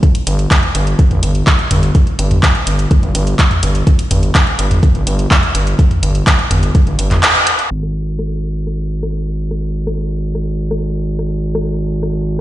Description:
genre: melodic techno.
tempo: 125 BPM.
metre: 4/4.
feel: straight.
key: unclear.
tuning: A4 = 440 Hz.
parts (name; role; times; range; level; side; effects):
electronic kick drum; drums; 0.0-6.8 s; none; -11 LUFS; equal; none.
techno drum kit; drums; 0.0-12.1 s; handclaps, hi-hat, rim click, toms; -16 LUFS; equal; overdrive, low-pass filter on hats, low-pass filter on toms, low-pass filter on snare.
gritty driven synth bass; bass; 0.3-12.4 s; G1 to G#1; -16 LUFS; equal; sidechain pumping.
room: light reverb, digital ambience.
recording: played on a big sound system in a bare room, stone room reverb, low-pass filter, nothing above 10.5 kHz.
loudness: -12 LUFS.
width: side -14 dB against mid.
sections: 0.0-7.7 A section; 7.7-12.4 B section.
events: kick drops out 7.2-7.7; band accent 7.2; filter sweep 7.7-12.4.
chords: none.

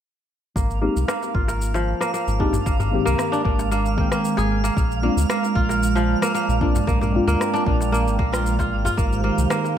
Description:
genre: organic downtempo.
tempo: 114 BPM.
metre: 4/4.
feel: straight.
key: unclear.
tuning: A4 = 439 Hz.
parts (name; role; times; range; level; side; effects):
warm analog pad; sustained chords; 0.6-9.8 s; Eb3 to Eb6; -27 LUFS; right 7 dB; chorus, sidechain pumping.
kora; arpeggios; 0.6-9.8 s; F3 to Bb4; -24 LUFS; right 1 dB; low-pass filter, ping-pong delay.
round analog bass; bass; 0.6-9.5 s; Ab1 to D2; -23 LUFS; equal; sidechain pumping.
electronic kick drum; drums; 0.6-9.1 s; none; -24 LUFS; equal; studio reverb.
electronic shaker and rim click; drums; 0.6-9.7 s; none; -31 LUFS; left 1 dB; overdrive, studio reverb.
twinkling granular texture; texture; 0.8-9.8 s; F5 to G5; -33 LUFS; right 4 dB; built-in reverb.
deep mellow chord stab; accompaniment; 0.8-8.2 s; Eb3 to G5; -26 LUFS; left 4 dB; chorus, sidechain pumping, ping-pong delay.
darbuka; percussion; 1.1-9.7 s; none; -31 LUFS; left 3 dB; none.
room: moderate echo chamber reverb, RT60 1.6 s, digital ambience.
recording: none.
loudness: -18 LUFS.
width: side -10 dB against mid.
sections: 0.6-9.0 A section.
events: none.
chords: 0.6 Abmaj7; 4.8 Bb7; 9.0 Abmaj7.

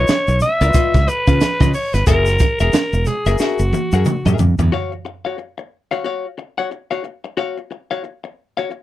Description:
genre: funk.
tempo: 90 BPM.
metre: 4/4.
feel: swing 60% on 16ths.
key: unclear.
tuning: A4 = 441 Hz.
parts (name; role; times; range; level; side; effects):
growling alto saxophone; melody; 0.0-4.4 s; Gb4 to Fb5; -19 LUFS; equal; none.
vintage hollow-body jazz guitar; accompaniment; 0.0-8.7 s; F4 to Gb5; -23 LUFS; left 7 dB; none.
modern bright fingered electric bass; bass; 0.0-4.7 s; Fb1 to Db3; -16 LUFS; equal; none.
crisp fusion drum kit; drums; 0.1-4.7 s; hi-hat, kick drum, snare drum, toms; -18 LUFS; right 1 dB; none.
congas; percussion; 0.1-4.4 s; none; -25 LUFS; right 6 dB; none.
tube shaker; percussion; 0.1-4.7 s; none; -36 LUFS; left 4 dB; none.
room: little or no reverb.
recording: none.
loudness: -15 LUFS.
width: side -14 dB against mid.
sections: 0.0-4.7 A section; 4.7-8.8 B section.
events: drum fill 3.4-4.7.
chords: 0.0 Db9; 2.1 Gb9; 4.7 Ebm9 (rootless).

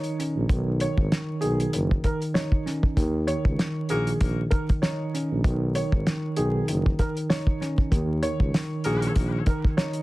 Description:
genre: hip hop, boom-bap hip-hop.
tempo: 97 BPM.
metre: 4/4.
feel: swing 55% on 16ths.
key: Eb minor.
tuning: A4 = 440 Hz.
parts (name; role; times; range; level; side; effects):
dark upright piano; melody; 0.0-10.0 s; G#4 to Db5; -32 LUFS; equal; ping-pong delay.
tine electric piano; accompaniment; 0.0-10.0 s; Eb3 to Eb4; -29 LUFS; right 1 dB; medium stereo tremolo, cassette tape.
cloth-damped thuddy drum kit; drums; 0.0-10.0 s; hi-hat, kick drum, snare drum; -24 LUFS; equal; none.
dark tuba; bass; 0.4-9.4 s; F#1 to Eb2; -27 LUFS; equal; none.
warm horn section; stabs; 3.9-4.1, 8.8-9.1 s; Bb3 to Bb4; -35 LUFS; left 3 dB; ping-pong delay.
room: light reverb.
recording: dense, heavily limited modern master, vinyl crackle.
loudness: -22 LUFS.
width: side -19 dB against mid.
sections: 0.0-10.0 A section.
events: none.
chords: 0.5 Badd9; 3.0 Eb7(no3); 5.4 Badd9; 7.9 Ebm7.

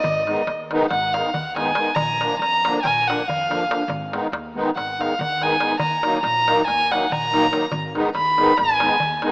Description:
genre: balkan folk, Balkan wedding band.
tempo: 282 BPM (eighths).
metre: 9/8.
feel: straight.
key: Ab dorian sharp4.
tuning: A4 = 441 Hz.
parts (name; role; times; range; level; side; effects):
rich violin; second line; 0.0-9.2 s; Eb5 to Cb6; -20 LUFS; equal; none.
upright bass; bass; 0.0-9.3 s; Ab1 to F2; -35 LUFS; equal; none.
darbuka; percussion; 0.0-9.3 s; none; -29 LUFS; equal; none.
musette accordion; accompaniment; 0.3-9.3 s; D3 to Eb4; -24 LUFS; equal; none.
room: wet lush hall reverb, RT60 2.7 s.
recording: rough home demo mix, AM radio sound.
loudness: -18 LUFS.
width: side -28 dB against mid.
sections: 0.0-9.3 A section.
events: violin solo 0.0-9.3.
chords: 0.0 Abm; 2.0 Bb; 3.9 Abm; 5.8 Ebm; 7.7 Abm.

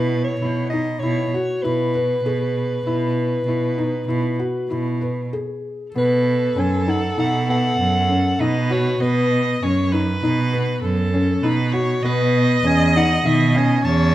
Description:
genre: contemporary instrumental, chamber music in an uneven meter.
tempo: 98 BPM.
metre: 5/4.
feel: straight.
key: B mixolydian.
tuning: A4 = 441 Hz.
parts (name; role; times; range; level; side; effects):
growling soprano saxophone; melody; 0.0-14.1 s; B4 to A5; -23 LUFS; equal; none.
felt-muted upright piano; arpeggios; 0.0-14.1 s; D#3 to B4; -23 LUFS; left 3 dB; none.
rich cello; bass; 0.0-14.1 s; E2 to B2; -21 LUFS; right 2 dB; none.
rich viola; second line; 5.9-14.1 s; A4 to D#5; -25 LUFS; right 1 dB; none.
room: moderate recital hall reverb, RT60 1.4 s.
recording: none.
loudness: -17 LUFS.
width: side -14 dB against mid.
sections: 0.0-6.0 A section; 6.0-14.1 B section.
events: break 5.3-6.0.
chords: 0.0 E/B; 6.0 B9; 12.0 Aadd9 (rootless).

